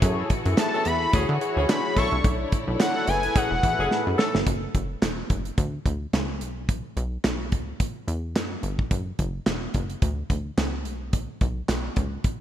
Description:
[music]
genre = early-eighties boogie funk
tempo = 108 BPM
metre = 4/4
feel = swing 56% on 16ths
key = unclear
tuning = A4 = 440 Hz
[part]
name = mellow synth brass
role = accompaniment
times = 0.0-4.2 s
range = D4 to E5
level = -29 LUFS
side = left 2 dB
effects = chorus
[part]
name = warm studio string section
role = sustained chords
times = 0.0-4.5 s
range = A2 to C#5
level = -34 LUFS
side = left 1 dB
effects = none
[part]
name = plucky analog bass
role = bass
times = 0.0-12.2 s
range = E1 to D3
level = -28 LUFS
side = equal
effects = none
[part]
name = modern studio drum kit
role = drums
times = 0.0-12.4 s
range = handclaps, hi-hat, kick drum, snare drum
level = -25 LUFS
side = equal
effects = none
[part]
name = fat analog lead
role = melody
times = 0.6-4.2 s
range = F#5 to C#6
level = -27 LUFS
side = left 1 dB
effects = none
[part]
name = warm horn section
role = second line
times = 0.7-4.4 s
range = E3 to A4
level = -32 LUFS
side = equal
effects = none
[sound]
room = light reverb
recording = bright 1980s-style digital production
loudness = -23 LUFS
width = side -11 dB against mid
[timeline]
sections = 0.0-4.5 A section; 4.5-12.4 B section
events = drum fill 3.9-4.5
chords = 0.0 F#m9; 1.1 Dmaj9#11; 2.0 Bm11; 3.1 F#m11; 4.5 Esus2; 5.6 N.C.; 7.5 C#m; 8.9 Esus2; 10.0 N.C.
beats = | 0.02 0.58 1.13 1.69 | 2.24 2.80 3.35 3.91 | 4.47 5.02 5.58 6.13 | 6.69 7.24 7.80 8.36 | 8.91 9.47 10.02 10.58 | 11.13 11.69 12.24

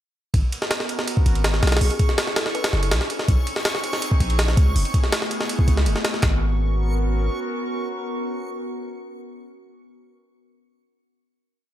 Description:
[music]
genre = drum and bass, jungle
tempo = 163 BPM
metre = 4/4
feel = straight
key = unclear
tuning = A4 = 440 Hz
[part]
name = warbly tape-like pad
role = sustained chords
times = 0.3-9.9 s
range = A3 to A#4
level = -30 LUFS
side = right 1 dB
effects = chorus, built-in reverb
[part]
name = long sustained 808-style bass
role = bass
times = 0.3-7.3 s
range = F#1 to C#2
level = -20 LUFS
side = equal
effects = tube saturation
[part]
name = jungle sampler-style drum kit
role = drums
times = 0.3-6.3 s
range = handclaps, hi-hat, kick drum, ride cymbal, snare drum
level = -21 LUFS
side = equal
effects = none
[part]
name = backwards swelling texture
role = texture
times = 0.3-6.2 s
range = C#6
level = -34 LUFS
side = right 3 dB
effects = built-in reverb
[part]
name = kalimba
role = melody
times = 1.7-3.1 s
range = G#4 to B4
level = -32 LUFS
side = left 2 dB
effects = dub echo
[sound]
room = digital ambience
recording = none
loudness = -19 LUFS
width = side -12 dB against mid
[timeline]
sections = 0.3-6.2 drop; 6.2-9.2 final chord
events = drop 0.3-6.2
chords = 0.3 G#m11; 1.8 Bm11; 3.3 A#m11; 4.8 F#m11 (rootless); 6.2 G#m11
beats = | 0.34 0.71 1.08 1.44 | 1.81 2.18 2.55 2.92 | 3.29 3.65 4.02 4.39 | 4.76 5.12 5.49 5.86 | 6.23 6.60 6.97 7.33 | 7.70 8.07 8.44 8.81

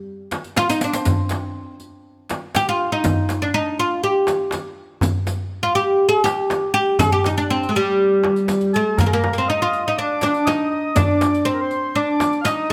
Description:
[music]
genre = Arabic maqam ensemble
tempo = 121 BPM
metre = 4/4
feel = straight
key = G maqam bayati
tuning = A4 = 441 Hz
[part]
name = darbuka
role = percussion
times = 0.3-12.7 s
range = none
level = -26 LUFS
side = equal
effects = none
[part]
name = frame drum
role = percussion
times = 0.3-12.6 s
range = none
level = -29 LUFS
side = equal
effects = none
[part]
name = riq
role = percussion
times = 0.3-12.6 s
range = none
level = -33 LUFS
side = equal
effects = none
[part]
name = oud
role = melody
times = 0.6-12.7 s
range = G3 to Ab4+50c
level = -21 LUFS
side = equal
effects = none
[part]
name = mellow accordion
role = second line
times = 8.7-12.7 s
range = Ab4+50c to F5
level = -26 LUFS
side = equal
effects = none
[sound]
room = light reverb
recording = close, detailed microphones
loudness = -19 LUFS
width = mono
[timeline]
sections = 0.0-9.0 A section; 9.0-12.7 B section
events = drum fill 0.6-1.1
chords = none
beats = 0.08 0.57 | 1.07 1.56 2.06 2.55 | 3.04 3.54 4.04 4.53 | 5.03 5.52 6.02 6.51 | 7.01 7.50 8.00 8.49 | 8.99 9.48 9.98 10.47 | 10.97 11.46 11.96 12.45

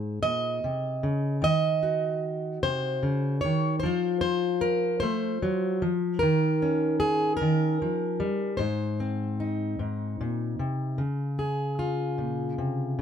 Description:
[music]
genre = folk, solo fingerstyle acoustic guitar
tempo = 50 BPM (dotted quarters)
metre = 6/8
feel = straight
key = Db major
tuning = A4 = 445 Hz
[part]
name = fingerpicked plugged-in steel-string acoustic guitar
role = solo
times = 0.0-13.0 s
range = Ab2 to Eb5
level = -25 LUFS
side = equal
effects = none
[sound]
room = moderate studio reverb, RT60 0.6 s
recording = close, detailed microphones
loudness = -25 LUFS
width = side -8 dB against mid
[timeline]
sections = 0.0-11.0 A section; 11.0-13.0 B section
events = none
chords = 0.0 Ab; 1.4 Ebm; 3.8 F; 6.2 Eb7; 8.6 Ab; 11.0 Db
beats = 0.22 | 1.43 2.63 | 3.83 5.02 | 6.21 7.40 | 8.59 9.79 | 10.99 12.19

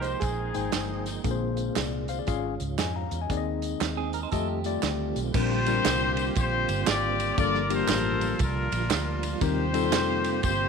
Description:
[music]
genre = uptempo gospel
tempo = 118 BPM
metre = 4/4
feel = swing 64% on 8ths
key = Bb major from 5.3 s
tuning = A4 = 440 Hz
[part]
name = clear horn section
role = melody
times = 0.0-1.2, 5.3-10.7 s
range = C4 to D5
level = -28 LUFS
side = left 3 dB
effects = none
[part]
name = warm grand piano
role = melody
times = 0.0-1.0 s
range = Ab4 to C5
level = -36 LUFS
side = right 6 dB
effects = tape echo
[part]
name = mellow tonewheel organ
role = sustained chords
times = 0.0-10.7 s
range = C3 to G5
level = -34 LUFS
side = right 12 dB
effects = slow rotary speaker, chorus vibrato
[part]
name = vintage muted fingered electric bass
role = bass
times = 0.0-10.7 s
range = G1 to F2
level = -32 LUFS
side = equal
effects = none
[part]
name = warm soul drum kit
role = drums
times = 0.0-10.6 s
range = crash cymbal, hi-hat, kick drum, ride cymbal, snare drum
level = -31 LUFS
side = right 5 dB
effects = none
[part]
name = tambourine and handclaps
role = percussion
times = 0.0-10.6 s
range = none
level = -37 LUFS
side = right 3 dB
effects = none
[part]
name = tine electric piano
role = accompaniment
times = 0.5-10.4 s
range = G2 to Bb5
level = -30 LUFS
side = left 12 dB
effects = medium stereo tremolo
[part]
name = clean electric guitar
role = second line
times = 4.0-5.2 s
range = C4 to C5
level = -35 LUFS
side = right 11 dB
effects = spring reverb
[sound]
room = light reverb, studio reverb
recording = 1960s-style stereo with parts hard left and right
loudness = -24 LUFS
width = side -5 dB against mid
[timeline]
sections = 0.0-5.3 A section; 5.3-10.7 B section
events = none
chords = 0.0 Fm11; 1.2 Bb9; 2.3 Db/Ab; 3.3 Ab/Eb; 4.3 F9; 5.3 Bb69; 7.4 Gm9; 9.4 Eb69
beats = 0.22 0.73 | 1.25 1.76 2.27 2.78 | 3.30 3.81 4.32 4.83 | 5.34 5.85 6.36 6.87 | 7.38 7.89 8.40 8.90 | 9.41 9.92 10.43

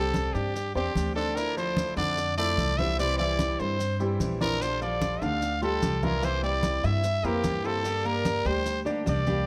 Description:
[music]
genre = latin, Cuban son and guajira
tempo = 148 BPM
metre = 4/4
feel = straight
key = unclear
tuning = A4 = 443 Hz
[part]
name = growling trumpet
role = melody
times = 0.0-9.5 s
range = G4 to F5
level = -31 LUFS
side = equal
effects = none
[part]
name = fingerpicked swing-style acoustic guitar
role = accompaniment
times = 0.0-9.5 s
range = C3 to G4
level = -38 LUFS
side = equal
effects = none
[part]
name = warm baby grand piano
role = arpeggios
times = 0.0-9.4 s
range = C3 to G5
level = -35 LUFS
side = equal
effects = none
[part]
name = upright bass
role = bass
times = 0.0-9.5 s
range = Bb1 to G2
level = -33 LUFS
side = equal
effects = none
[part]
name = congas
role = percussion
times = 0.1-9.5 s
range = none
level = -35 LUFS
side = equal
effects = none
[part]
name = maracas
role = percussion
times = 0.2-9.5 s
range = none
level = -48 LUFS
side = equal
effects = none
[sound]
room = light reverb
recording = none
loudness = -27 LUFS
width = mono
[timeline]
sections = 0.0-9.5 A section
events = none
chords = 0.0 Csus2; 1.4 Dmadd9; 3.0 C; 4.6 Bb6; 6.2 C7; 7.8 Gm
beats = 0.15 0.56 0.96 | 1.37 1.77 2.18 2.58 | 2.99 3.39 3.80 4.20 | 4.61 5.01 5.42 5.83 | 6.23 6.63 7.04 7.45 | 7.85 8.26 8.66 9.06

